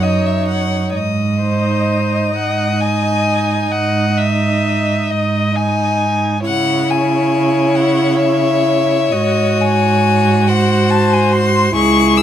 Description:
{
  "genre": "classical, slow romantic movement for string quartet",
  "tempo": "41-48 BPM (dotted quarters)",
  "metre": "12/8",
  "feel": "rubato",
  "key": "unclear",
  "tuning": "A4 = 441 Hz",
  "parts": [
    { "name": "rich violin", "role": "melody", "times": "0.0-12.2 s", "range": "D#5 to E6", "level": "-18 LUFS", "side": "left 6 dB", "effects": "none" },
    { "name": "warm violin", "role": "second line", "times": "0.0-12.2 s", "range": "G#4 to G#5", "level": "-20 LUFS", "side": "left 2 dB", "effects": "none" },
    { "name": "warm viola", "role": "accompaniment", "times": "0.0-12.2 s", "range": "D#4 to F#4", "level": "-19 LUFS", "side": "right 1 dB", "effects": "none" },
    { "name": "rich cello", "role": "bass", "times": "0.0-12.2 s", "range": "C#2 to C#3", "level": "-17 LUFS", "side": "right 3 dB", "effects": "none" }
  ],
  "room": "little or no reverb",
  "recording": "close, detailed microphones",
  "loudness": "-13 LUFS",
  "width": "side -10 dB against mid",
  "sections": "0.0-12.2 A section",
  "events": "none",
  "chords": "0.0 F#7(no3); 0.9 G#5; 6.5 C#m; 9.1 G#7"
}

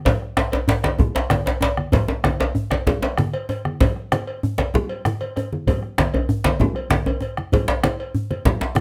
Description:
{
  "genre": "west african traditional, West African drum ensemble",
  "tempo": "129 BPM (dotted quarters)",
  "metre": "12/8",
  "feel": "straight",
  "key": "none",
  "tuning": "none",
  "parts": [
    { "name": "bombo", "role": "percussion", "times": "0.1-8.8 s", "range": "none", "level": "-24 LUFS", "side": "equal", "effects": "none" },
    { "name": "congas", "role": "percussion", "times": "0.1-8.8 s", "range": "none", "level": "-27 LUFS", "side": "equal", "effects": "none" },
    { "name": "cowbell", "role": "percussion", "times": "0.1-8.4 s", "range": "none", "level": "-32 LUFS", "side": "equal", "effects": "none" },
    { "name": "djembe", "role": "percussion", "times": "0.1-8.8 s", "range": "none", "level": "-27 LUFS", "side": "equal", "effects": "none" },
    { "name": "djembe", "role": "percussion", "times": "0.1-8.8 s", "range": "none", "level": "-25 LUFS", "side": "equal", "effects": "none" }
  ],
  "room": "light reverb",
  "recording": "none",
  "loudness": "-21 LUFS",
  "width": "mono",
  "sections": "0.1-8.8 A section",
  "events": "none",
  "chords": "none"
}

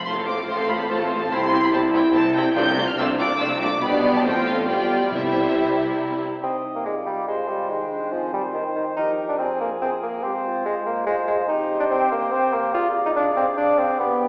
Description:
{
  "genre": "quick classical-period movement for symphony orchestra",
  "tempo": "142 BPM",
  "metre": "3/4",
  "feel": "straight",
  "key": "C major, C minor from 6.4 s",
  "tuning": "A4 = 439 Hz",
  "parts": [
    { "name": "rich chamber violin section", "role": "melody", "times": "0.0-6.2 s", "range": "E5 to G6", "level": "-28 LUFS", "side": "equal", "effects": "none" },
    { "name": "warm chamber violin section", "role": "second line", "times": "0.0-6.2 s", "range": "F4 to F5", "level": "-29 LUFS", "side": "equal", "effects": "none" },
    { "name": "rich chamber viola section", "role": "accompaniment", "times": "0.0-6.2 s", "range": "G3 to A4", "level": "-28 LUFS", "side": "equal", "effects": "none" },
    { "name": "warm French horn section", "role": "sustained chords", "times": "0.0-14.3 s", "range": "C3 to F4", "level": "-30 LUFS", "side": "equal", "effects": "none" },
    { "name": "rich chamber double bass section", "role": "bass", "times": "0.0-6.2 s", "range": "A1 to C2", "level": "-36 LUFS", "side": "equal", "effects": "none" },
    { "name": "warm chamber cello section", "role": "bass", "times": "0.0-6.2 s", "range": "A2 to C3", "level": "-30 LUFS", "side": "equal", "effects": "none" },
    { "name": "timpani", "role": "percussion", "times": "2.6-5.7 s", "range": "C3", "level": "-38 LUFS", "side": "equal", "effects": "none" },
    { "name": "mellow clarinet", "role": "second line", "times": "6.4-14.3 s", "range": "C4 to Ab4", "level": "-34 LUFS", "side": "equal", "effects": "none" },
    { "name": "mellow cor anglais", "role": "second line", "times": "6.4-14.3 s", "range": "Ab4 to Eb5", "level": "-31 LUFS", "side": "equal", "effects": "none" },
    { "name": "mellow hollow silver concert flute", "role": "second line", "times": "6.4-14.3 s", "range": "F5 to Ab5", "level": "-32 LUFS", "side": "equal", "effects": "none" },
    { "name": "clear bassoon", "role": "accompaniment", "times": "6.4-14.3 s", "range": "Eb3 to F4", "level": "-25 LUFS", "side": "equal", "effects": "none" }
  ],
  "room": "wet recital hall reverb, RT60 1.7 s",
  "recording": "recorded in a church or concert hall, AM radio sound",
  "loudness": "-22 LUFS",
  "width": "mono",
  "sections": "0.0-6.4 A section; 6.4-14.3 A section",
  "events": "none",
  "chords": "0.1 F/A; 1.3 C; 2.6 Dm7/C; 3.8 G/B; 4.3 F/A; 4.7 G7/B; 5.1 C; 6.4 Cm; 7.7 Cm/Eb; 9.0 Fm; 10.2 Fm/Ab; 11.5 C5; 12.7 Dm7b5/C"
}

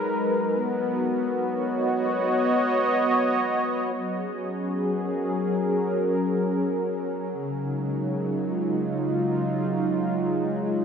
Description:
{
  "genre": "ambient",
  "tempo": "53 BPM",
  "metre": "3/4",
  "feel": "straight",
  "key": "F# major",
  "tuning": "A4 = 440 Hz",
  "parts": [
    { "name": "warm analog pad", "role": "sustained chords", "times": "0.0-10.8 s", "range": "C#3 to D#5", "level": "-23 LUFS", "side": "equal", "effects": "chorus, tremolo" },
    { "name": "bowed-like drone", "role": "drone", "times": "0.0-10.8 s", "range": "F#3", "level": "-34 LUFS", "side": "right 3 dB", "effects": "built-in reverb" },
    { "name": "soft round pluck", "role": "arpeggios", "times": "2.2-4.5 s", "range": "none", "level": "barely audible", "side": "none", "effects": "none" }
  ],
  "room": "wet huge ambient reverb, RT60 8.7 s",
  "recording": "in a vast, echoing space",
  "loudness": "-23 LUFS",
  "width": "side -7 dB against mid",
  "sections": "0.0-3.9 A section; 3.9-10.8 B section",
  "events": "fade-out on synth drone 0.0-3.9; filter sweep on analog synth pad 0.0-3.9, 3.9-10.8",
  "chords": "0.0 G#m; 0.5 Bmaj7; 3.9 F#; 7.3 C#"
}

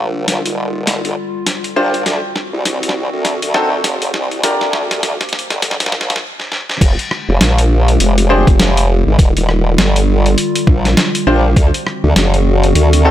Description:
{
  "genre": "glitch hop",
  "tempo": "101 BPM",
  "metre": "4/4",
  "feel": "swing 60% on 16ths",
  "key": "F dorian",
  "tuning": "A4 = 441 Hz",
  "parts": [
    { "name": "warbly tape-like pad", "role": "sustained chords", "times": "0.0-13.1 s", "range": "D3 to G4", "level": "-21 LUFS", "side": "left 1 dB", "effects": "chorus, built-in reverb, vintage 12-bit sampler grit, sidechain pumping" },
    { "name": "formant-sweep wobble bass", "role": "bass", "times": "0.0-13.1 s", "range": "Eb1 to D2", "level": "-14 LUFS", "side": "equal", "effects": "chorus, tube saturation, high-pass filter" },
    { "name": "boom bap sampler-style drum kit", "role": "drums", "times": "0.3-13.0 s", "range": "crash cymbal, hi-hat, rim click, snare drum", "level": "-17 LUFS", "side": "equal", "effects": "none" },
    { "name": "bright grand piano", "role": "stabs", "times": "1.8-4.6, 8.3-13.1 s", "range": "C4 to C5", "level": "-17 LUFS", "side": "left 1 dB", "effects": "vintage 12-bit sampler grit, sidechain pumping, digital delay" },
    { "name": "electronic kick drum", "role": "drums", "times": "6.8-11.7 s", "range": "none", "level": "-11 LUFS", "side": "equal", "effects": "overdrive" }
  ],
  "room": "little or no reverb",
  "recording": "high-pass filter",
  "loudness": "-12 LUFS",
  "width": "side -12 dB against mid",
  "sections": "0.0-6.8 A section; 6.8-13.1 B section",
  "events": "build-up 0.0-6.8; drum fill 0.0-6.2, 6.4-6.8; stop 6.2-6.8; drop 6.8-13.1",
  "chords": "0.0 Ebmaj9; 2.1 D7b9; 4.4 Gm7; 6.8 Fm69; 9.2 Ebmaj9; 11.6 D7b9"
}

